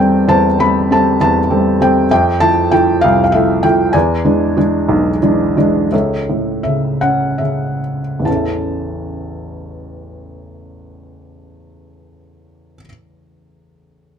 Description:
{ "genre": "classical, lyrical solo piano", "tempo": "43-67 BPM (dotted quarters)", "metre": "6/8", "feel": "rubato", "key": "A major from 5.9 s", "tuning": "A4 = 440 Hz", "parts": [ { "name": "felt-muted upright piano", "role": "solo", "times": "0.0-14.2 s", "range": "A1 to B5", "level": "-12 LUFS", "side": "equal", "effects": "none" } ], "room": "light reverb", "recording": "dark, warm production", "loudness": "-12 LUFS", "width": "side -7 dB against mid", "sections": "0.0-5.9 A section; 5.9-8.3 B section; 8.3-13.6 C section", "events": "slowing down 3.9-8.3", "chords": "0.0 Am7; 2.1 Fmaj7; 3.9 E7; 5.9 A/C#; 8.3 A", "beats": "| 0.28 1.20 | 2.10 3.02 | 3.94 4.90 | 5.93 7.03 | 8.27 9.64 | 10.96 12.27" }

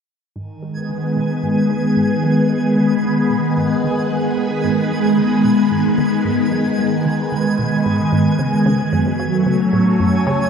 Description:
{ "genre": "ambient, sequencer-driven space music", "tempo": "112 BPM", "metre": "4/4", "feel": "straight", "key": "G# phrygian", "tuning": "A4 = 441 Hz", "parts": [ { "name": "phased string machine", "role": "sustained chords", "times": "0.4-10.5 s", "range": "D#3 to C#5", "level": "-15 LUFS", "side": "equal", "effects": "ensemble chorus, phaser" }, { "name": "resonant blip pluck", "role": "riff", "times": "0.4-10.4 s", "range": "F#2 to B3", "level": "-26 LUFS", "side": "equal", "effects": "chorus, vintage 12-bit sampler grit, ping-pong delay" }, { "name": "twinkling granular texture", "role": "texture", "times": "0.8-10.5 s", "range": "G#5", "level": "-29 LUFS", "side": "right 2 dB", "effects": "built-in reverb" } ], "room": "wet scoring stage reverb, RT60 2.0 s", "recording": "dark, warm production", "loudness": "-14 LUFS", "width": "side -6 dB against mid", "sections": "0.4-10.5 A section", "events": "fade-in on synth arpeggio sound 0.4-10.5; filter sweep on string machine 0.4-10.5", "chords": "0.4 G#m; 8.9 F#m", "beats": "| 0.36 0.89 1.43 1.96 | 2.50 3.04 3.57 4.11 | 4.64 5.18 5.71 6.25 | 6.79 7.32 7.86 8.39 | 8.93 9.46 10.00" }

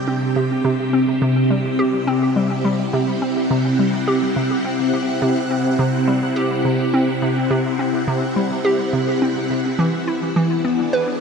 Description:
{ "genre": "ambient, sequencer-driven space music", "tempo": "105 BPM", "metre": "4/4", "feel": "straight", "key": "C lydian", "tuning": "A4 = 440 Hz", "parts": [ { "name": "phased string machine", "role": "sustained chords", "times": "0.0-11.2 s", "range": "C3 to G5", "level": "-19 LUFS", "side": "equal", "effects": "ensemble chorus, phaser" }, { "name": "hollow square pluck", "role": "riff", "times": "0.1-11.1 s", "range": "C3 to B4", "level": "-20 LUFS", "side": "equal", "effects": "chorus, tape echo" } ], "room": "wet huge ambient reverb, RT60 7.9 s", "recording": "in a vast, echoing space", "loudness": "-17 LUFS", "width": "side -5 dB against mid", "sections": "0.0-11.2 A section", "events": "none", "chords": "0.0 Csus2; 9.8 E7", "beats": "0.08 | 0.65 1.22 1.79 2.36 | 2.93 3.51 4.08 4.65 | 5.22 5.79 6.36 6.93 | 7.51 8.08 8.65 9.22 | 9.79 10.36 10.93" }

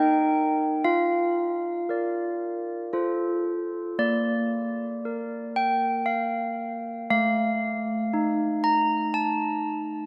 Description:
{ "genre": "classical, tune for handbells", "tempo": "58 BPM", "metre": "3/4", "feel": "straight", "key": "unclear", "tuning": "A4 = 436 Hz", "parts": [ { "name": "handbells", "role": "solo", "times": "0.0-10.1 s", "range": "A3 to Bb5", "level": "-26 LUFS", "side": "equal", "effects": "none" } ], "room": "wet cathedral reverb, RT60 4.5 s", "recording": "none", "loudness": "-26 LUFS", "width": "mono", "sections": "0.0-10.1 A section", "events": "none", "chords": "0.0 Eb; 0.8 Bb/F; 2.9 F; 4.0 N.C.; 7.1 F7/A", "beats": "| 0.84 1.90 2.95 | 3.99 5.03 6.07 | 7.10 8.12 9.14" }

